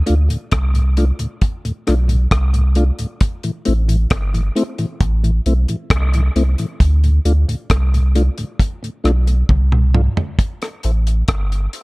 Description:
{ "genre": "dub reggae", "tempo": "67 BPM", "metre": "4/4", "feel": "straight", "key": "unclear", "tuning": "A4 = 441 Hz", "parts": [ { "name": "warm sub bass", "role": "bass", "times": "0.0-11.7 s", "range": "G1 to D2", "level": "-14 LUFS", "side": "equal", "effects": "none" }, { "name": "mellow tonewheel organ", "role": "accompaniment", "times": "0.1-11.8 s", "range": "D2 to F4", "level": "-22 LUFS", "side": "left 1 dB", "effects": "slow rotary speaker, high-pass filter" }, { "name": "deep reggae drum kit", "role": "drums", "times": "0.1-11.8 s", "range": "hi-hat, kick drum, rim click, toms", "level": "-18 LUFS", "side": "equal", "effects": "none" } ], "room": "small room ambience", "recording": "dark, warm production", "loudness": "-14 LUFS", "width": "side -24 dB against mid", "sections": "0.0-11.8 A section", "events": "filter sweep on tonewheel organ 6.8-11.8; drum fill 9.5-10.4", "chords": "0.0 D5; 3.2 Am; 6.8 D5; 10.4 A5", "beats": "0.53 1.42 2.32 | 3.22 4.11 5.01 5.91 | 6.80 7.70 8.60 9.49 | 10.39 11.28" }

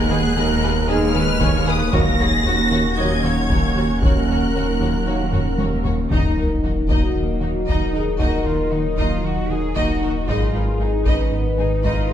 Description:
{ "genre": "cinematic, hybrid orchestral and electronic film score", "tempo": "115 BPM", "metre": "4/4", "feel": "straight", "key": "Eb minor", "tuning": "A4 = 440 Hz", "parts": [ { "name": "warm symphonic violin section", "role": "melody", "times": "0.0-12.1 s", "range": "Eb5 to Bb6", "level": "-27 LUFS", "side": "left 2 dB", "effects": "none" }, { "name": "clear symphonic viola section", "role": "accompaniment", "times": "0.0-12.1 s", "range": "Eb4 to Eb5", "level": "-29 LUFS", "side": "equal", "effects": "none" }, { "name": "dark French horn section", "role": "sustained chords", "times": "0.0-12.1 s", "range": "Cb4 to Db5", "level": "-27 LUFS", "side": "left 4 dB", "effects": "none" }, { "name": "dark analog pad", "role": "sustained chords", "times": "0.0-12.1 s", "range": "Eb3 to Gb5", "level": "-28 LUFS", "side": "equal", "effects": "chorus, phaser" }, { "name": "warm trombone section", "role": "sustained chords", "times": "0.0-12.1 s", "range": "Eb3 to Eb4", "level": "-31 LUFS", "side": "right 4 dB", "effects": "none" }, { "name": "mellow tuba", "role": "bass", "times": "0.0-12.1 s", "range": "Ab1 to Eb2", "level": "-27 LUFS", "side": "right 1 dB", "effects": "none" }, { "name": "pure sine sub bass", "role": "bass", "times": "0.0-12.1 s", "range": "Eb1 to Ab1", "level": "-25 LUFS", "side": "equal", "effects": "none" }, { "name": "rich symphonic cello section", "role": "bass", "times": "0.0-12.1 s", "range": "Eb2 to Ab4", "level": "-29 LUFS", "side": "right 3 dB", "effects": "none" }, { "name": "rich symphonic double bass section", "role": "bass", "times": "0.0-12.1 s", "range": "Ab1 to Eb2", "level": "-29 LUFS", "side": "right 3 dB", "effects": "none" }, { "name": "warm symphonic violin section", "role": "second line", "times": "0.1-12.1 s", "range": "Gb4 to Eb5", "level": "-30 LUFS", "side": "left 2 dB", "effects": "none" }, { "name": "fat analog bass", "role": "riff", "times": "0.1-12.1 s", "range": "Eb2 to Ab3", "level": "-26 LUFS", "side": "right 2 dB", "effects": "none" }, { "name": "taiko ensemble", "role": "drums", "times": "1.4-12.1 s", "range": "none", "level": "-23 LUFS", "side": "left 1 dB", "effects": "none" }, { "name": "sub drop", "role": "sound effects", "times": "6.1-8.2 s", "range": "none", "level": "-25 LUFS", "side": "left 1 dB", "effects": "none" } ], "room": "wet recital hall reverb, RT60 1.5 s", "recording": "recorded in a church or concert hall", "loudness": "-17 LUFS", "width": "side -10 dB against mid", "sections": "0.0-6.1 A section; 6.1-12.1 B section", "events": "drum fill 5.3-6.1; impact 6.1-8.2", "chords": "0.0 Abm/Eb; 1.9 Gb/Eb; 6.1 Ebm; 10.3 Abm", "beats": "0.37 0.89 1.42 | 1.94 2.46 2.98 3.50 | 4.02 4.55 5.07 5.59 | 6.11 6.63 7.15 7.68 | 8.20 8.72 9.24 9.76 | 10.29 10.81 11.33 11.85" }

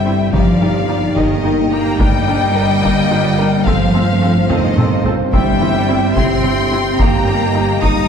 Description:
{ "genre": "cinematic, hybrid orchestral and electronic film score", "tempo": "72 BPM (dotted quarters)", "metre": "6/8", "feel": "straight", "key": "unclear", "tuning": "A4 = 440 Hz", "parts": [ { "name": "warm symphonic violin section", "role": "melody", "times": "0.0-8.1 s", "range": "Eb5 to Eb6", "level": "-21 LUFS", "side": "left 5 dB", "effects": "none" }, { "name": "rich symphonic violin section", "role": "second line", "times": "0.0-8.1 s", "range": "Bb4 to Bb5", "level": "-24 LUFS", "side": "left 2 dB", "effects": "none" }, { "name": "dark analog pad", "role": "sustained chords", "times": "0.0-8.1 s", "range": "D3 to G5", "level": "-20 LUFS", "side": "equal", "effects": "chorus, phaser" }, { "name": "clear symphonic cello section", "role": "bass", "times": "0.0-8.1 s", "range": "Eb3 to Eb4", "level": "-19 LUFS", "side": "equal", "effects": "none" }, { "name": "rich symphonic double bass section", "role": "bass", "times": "0.0-8.1 s", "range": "G1", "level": "-19 LUFS", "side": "right 3 dB", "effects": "none" }, { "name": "warm symphonic viola section", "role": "accompaniment", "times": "0.1-7.9 s", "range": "Bb3 to Bb4", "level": "-24 LUFS", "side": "right 1 dB", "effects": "none" }, { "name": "analog pluck", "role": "arpeggios", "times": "0.1-8.0 s", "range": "C3 to Bb4", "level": "-25 LUFS", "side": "equal", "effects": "none" }, { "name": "taiko ensemble", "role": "drums", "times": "0.3-8.1 s", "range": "none", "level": "-19 LUFS", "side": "equal", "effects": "none" } ], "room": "wet scoring stage reverb, RT60 1.5 s", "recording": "heard from further back in the room", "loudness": "-12 LUFS", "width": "side -7 dB against mid", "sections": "0.0-8.1 A section", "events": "drum fill 4.5-5.3", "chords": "0.3 Eb/G; 2.0 Bb/G; 3.7 F/G; 5.3 C/G; 7.0 Eb/G", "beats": "| 0.33 1.17 | 2.00 2.83 | 3.67 4.50 | 5.33 6.17 | 7.00 7.83" }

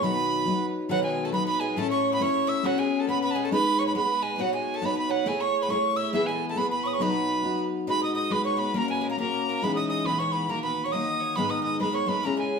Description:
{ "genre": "celtic folk", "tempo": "138 BPM", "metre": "2/4", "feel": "swing 61% on 8ths", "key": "B mixolydian, G# minor from 7.9 s", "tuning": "A4 = 438 Hz", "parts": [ { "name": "bright reedy tin whistle", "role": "melody", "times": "0.0-12.6 s", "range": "E5 to E6", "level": "-28 LUFS", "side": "right 2 dB", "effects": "plate reverb" }, { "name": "Irish bouzouki", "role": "second line", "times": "0.0-12.6 s", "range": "E3 to E4", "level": "-33 LUFS", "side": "right 7 dB", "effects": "none" }, { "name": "bright fiddle", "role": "second line", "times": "0.0-12.6 s", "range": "E4 to E5", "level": "-36 LUFS", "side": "left 3 dB", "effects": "none" }, { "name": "picked steel-string acoustic guitar", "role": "accompaniment", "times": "0.0-12.6 s", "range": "G#2 to C#5", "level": "-27 LUFS", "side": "left 3 dB", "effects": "none" } ], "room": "wet studio reverb, RT60 0.7 s", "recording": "heard from further back in the room", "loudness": "-24 LUFS", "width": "side -5 dB against mid", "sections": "0.9-7.9 A section; 7.9-12.6 B section", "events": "none", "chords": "0.0 B; 1.8 A; 2.6 Bsus2; 3.5 G#m; 4.4 Badd9; 5.3 Amaj7; 6.1 E; 7.0 B; 7.9 G#m7; 8.8 F#; 9.6 C#madd9; 10.5 D#m; 11.4 G#madd9", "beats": "| 0.03 0.46 | 0.90 1.33 | 1.77 2.21 | 2.64 3.08 | 3.52 3.95 | 4.39 4.82 | 5.26 5.70 | 6.13 6.57 | 7.00 7.44 | 7.88 8.31 | 8.75 9.19 | 9.62 10.06 | 10.50 10.93 | 11.37 11.81 | 12.24" }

